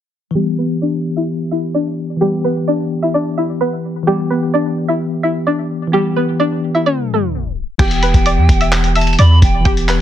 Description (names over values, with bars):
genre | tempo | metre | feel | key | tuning
hip hop, trap | 129 BPM | 4/4 | half-time | E minor | A4 = 439 Hz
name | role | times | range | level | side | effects
bell-like tine electric piano | accompaniment | 0.3-10.0 s | E3 to G4 | -19 LUFS | left 2 dB | medium stereo tremolo, low-pass filter
string-like resonator pluck | melody | 0.4-10.0 s | G3 to E6 | -18 LUFS | equal | chorus, low-pass filter
breathy polished pan flute | second line | 7.8-9.6 s | G5 to B5 | -21 LUFS | right 4 dB | ping-pong delay
clean 808-style bass | bass | 7.8-10.0 s | E1 to E2 | -13 LUFS | equal | none
lo-fi sampler-style drum kit | drums | 7.8-10.0 s | crash cymbal, handclaps, hi-hat, kick drum | -15 LUFS | equal | none
room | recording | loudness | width
digital ambience | dense, heavily limited modern master, tape stop | -13 LUFS | side -11 dB against mid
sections
0.4-7.8 A section; 7.8-10.0 B section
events
filter sweep 0.4-7.8; tape stop 6.9-7.8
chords
0.4 Em